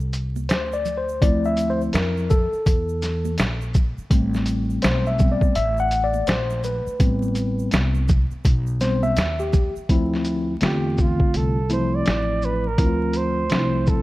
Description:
hip hop, jazz-hop; 83 BPM; 4/4; swing 62% on 16ths; D minor; A4 = 440 Hz
upright bass; bass; 0.0-14.0 s; A1 to F2; -25 LUFS; equal
egg shaker and congas; percussion; 0.0-9.9 s; -35 LUFS; right 8 dB
lo-fi sampler-style drum kit; drums; 0.1-14.0 s; hi-hat, kick drum, shaker, snare drum; -21 LUFS; equal
mellow tine electric piano; accompaniment; 0.5-14.0 s; D3 to F#5; -23 LUFS; left 1 dB; medium stereo tremolo
breathy flugelhorn; melody; 10.6-14.0 s; F4 to D5; -26 LUFS; right 4 dB; slapback echo
light reverb, studio ambience; dark, warm production, vinyl crackle; -19 LUFS; side -18 dB against mid
0.0-9.9 A section; 9.9-14.0 B section
tine electric piano solo 0.0-9.9
0.0 Dm9; 4.1 Am9; 9.9 Dm9
0.50 | 1.22 1.94 2.67 3.39 | 4.11 4.83 5.56 6.28 | 7.00 7.72 8.45 9.17 | 9.89 10.62 11.34 12.06 | 12.79 13.51

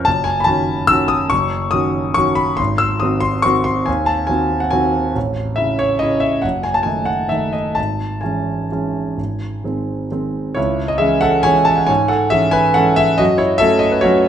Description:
classical, piano waltz; 124-153 BPM; 3/4; rubato; C# minor; A4 = 440 Hz
warm concert grand piano; solo; 0.0-14.3 s; F#1 to E6; -14 LUFS; equal
moderate recital hall reverb, RT60 1.4 s; -14 LUFS; side -9 dB against mid
0.0-10.6 A section; 10.6-14.3 B section
0.1 D#m7b5/F#; 2.6 G#7; 5.2 A; 6.4 D#dim/F#; 7.8 C#m/G#; 9.2 G#; 10.6 C#m; 13.2 F#m
| 0.06 0.47 0.89 | 1.31 1.73 2.16 | 2.59 3.01 3.44 | 3.87 4.29 4.73 | 5.16 5.58 6.02 | 6.44 6.86 7.32 | 7.78 8.23 8.71 | 9.18 9.64 10.11 | 10.57 11.01 11.46 | 11.89 12.32 12.77 | 13.20 13.61 14.05

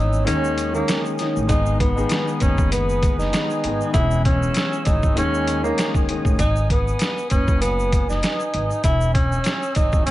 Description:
hip hop, boom-bap hip-hop; 98 BPM; 4/4; swing 57% on 16ths; G# minor; A4 = 436 Hz
breathy tenor saxophone; melody; 0.0-10.1 s; A#3 to E4; -24 LUFS; equal; high-pass filter, low-pass filter
dark baby grand piano; accompaniment; 0.0-6.4 s; D#3 to G#4; -25 LUFS; left 3 dB; high-pass filter, low-pass filter
dark analog pad; sustained chords; 0.0-10.1 s; B4 to E6; -30 LUFS; right 2 dB; chorus, phaser, high-pass filter, low-pass filter
upright bass; bass; 0.0-10.1 s; E1 to D#2; -23 LUFS; equal
egg shaker; percussion; 0.1-10.1 s; -41 LUFS; right 6 dB
trip hop sampler-style drum kit; drums; 0.3-10.1 s; hi-hat, kick drum, snare drum; -21 LUFS; equal
little or no reverb; vinyl crackle, nothing above 10.9 kHz; -18 LUFS; side -15 dB against mid
0.0-10.1 A section
break 0.0-1.5
0.3 D#7sus4; 1.5 G#m; 3.9 E6; 5.2 D#7sus4; 6.4 G#m; 8.8 E6
0.27 0.88 | 1.49 2.10 2.72 3.33 | 3.94 4.55 5.17 5.78 | 6.39 7.00 7.62 8.23 | 8.84 9.45 10.06

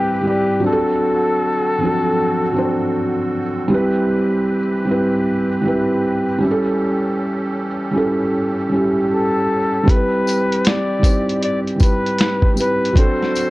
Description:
lo-fi hip hop; 78 BPM; 4/4; swing 65% on 16ths; A4 = 440 Hz
breathy flugelhorn; melody; 0.0-3.3, 9.1-13.5 s; G4 to D5; -20 LUFS; left 2 dB; low-pass filter
felt-muted upright piano; accompaniment; 0.0-13.5 s; F3 to D5; -18 LUFS; right 1 dB; cassette tape, low-pass filter
musette accordion; sustained chords; 0.0-13.5 s; D3 to B4; -29 LUFS; right 1 dB; low-pass filter
lo-fi sampler-style drum kit; drums; 9.9-13.5 s; hi-hat, kick drum, snare drum; -15 LUFS; equal
tambourine; percussion; 10.3-13.5 s; -32 LUFS; left 4 dB
moderate spring reverb, RT60 1.8 s; cassette tape; -15 LUFS; side -18 dB against mid
0.0-13.5 A section
0.0 Cmaj7; 0.7 D7; 3.7 Cmaj7; 6.4 A7; 9.9 Cmaj7; 13.0 D7
| 0.65 1.42 2.19 2.96 | 3.73 4.50 5.27 6.04 | 6.80 7.57 8.34 9.11 | 9.88 10.65 11.42 12.19 | 12.96

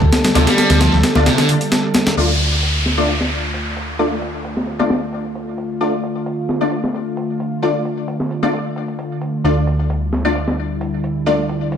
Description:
breakbeat, breaks; 132 BPM; 4/4; straight; D minor; A4 = 444 Hz
lush unison pad; sustained chords; 0.0-11.8 s; D3 to A4; -23 LUFS; equal; chorus, sidechain pumping
hollow-body short-scale picked electric bass; bass; 0.0-11.8 s; D2; -19 LUFS; equal; tube saturation, low-pass filter
breakbeat sampler-style drum kit; drums; 0.0-11.8 s; hi-hat, kick drum, snare drum; -20 LUFS; equal; low-pass filter on hats, low-pass filter on kick, low-pass filter on snare
congas; percussion; 0.1-2.2 s; -25 LUFS; left 3 dB
orchestra-hit-like synth stab; stabs; 0.3-11.4 s; A3 to D5; -21 LUFS; left 2 dB; built-in reverb, phaser, ping-pong delay
thick fuzz guitar; riff; 0.4-1.5 s; C3 to G3; -18 LUFS; equal; distortion, tube saturation, ping-pong delay
downlifter; sound effects; 2.2-5.8 s; -22 LUFS; equal
light reverb; -15 LUFS; side -8 dB against mid
0.0-2.2 A section; 2.2-11.8 B section
break 1.3-2.2; filter sweep on analog synth pad 2.2-11.8
0.0 Dm
| 0.35 0.81 1.26 1.72 | 2.17 2.63 3.08 3.54 | 3.99 4.45 4.90 5.35 | 5.81 6.26 6.72 7.17 | 7.63 8.08 8.54 8.99 | 9.45 9.90 10.35 10.81 | 11.26 11.72

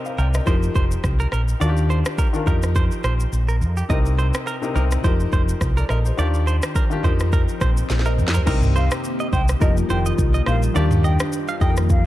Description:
afrobeats; 105 BPM; 4/4; swing 55% on 16ths; A4 = 438 Hz
warm baby grand piano; accompaniment; 0.0-12.1 s; C3 to G5; -26 LUFS; left 4 dB
afro-pop drum kit; drums; 0.1-12.0 s; crash cymbal, kick drum, rim click, shaker, snare drum, toms; -22 LUFS; equal
direct-recorded clean electric guitar; riff; 0.2-11.7 s; G4 to F5; -29 LUFS; right 5 dB; spring reverb, tape echo
fingered electric bass; bass; 0.2-12.0 s; F1 to F2; -20 LUFS; equal
swell; sound effects; 7.0-8.5 s; -36 LUFS; equal
hollow soft pad; sustained chords; 8.5-12.1 s; Eb3 to G4; -28 LUFS; equal; ensemble chorus
mellow hollow silver concert flute; melody; 8.8-12.0 s; Eb5 to G5; -30 LUFS; equal
digital ambience; dark, warm production; -17 LUFS; side -15 dB against mid
0.0-8.5 A section; 8.5-12.1 B section
swell 7.0-8.5; drum fill 7.9-8.5
0.5 F9sus4; 1.6 Ebmaj9; 2.5 F9sus4; 3.9 Cm7; 5.0 F9sus4; 6.2 Ebmaj9; 7.0 F9sus4; 8.5 Cm7; 9.6 F9sus4; 10.8 Ebmaj9
0.47 1.04 | 1.61 2.19 2.76 3.33 | 3.90 4.47 5.04 5.61 | 6.18 6.76 7.33 7.90 | 8.47 9.04 9.61 10.19 | 10.76 11.33 11.90

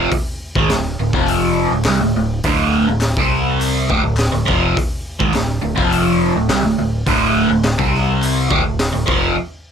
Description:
garage rock duo or trio; 104 BPM; 4/4; straight; A4 = 440 Hz
crunchy overdriven guitar; riff; 0.0-9.4 s; D2 to C4; -16 LUFS; right 1 dB; phaser
growling fingered electric bass; bass; 0.0-9.3 s; D1 to C2; -24 LUFS; equal; overdrive
raw garage drum kit; drums; 0.1-9.2 s; hi-hat, kick drum, snare drum; -22 LUFS; equal
group handclap; percussion; 0.7-8.9 s; -29 LUFS; left 6 dB
light reverb; -14 LUFS; side -7 dB against mid
0.0-9.7 A section
break 9.4-9.7
0.0 D5; 1.1 F5; 1.7 D5; 3.2 C5; 3.9 D5; 5.8 F5; 6.3 D5; 7.8 C5; 8.5 D5
| 0.12 0.70 1.28 1.86 | 2.44 3.02 3.60 4.18 | 4.76 5.34 5.92 6.49 | 7.07 7.65 8.22 8.80 | 9.37

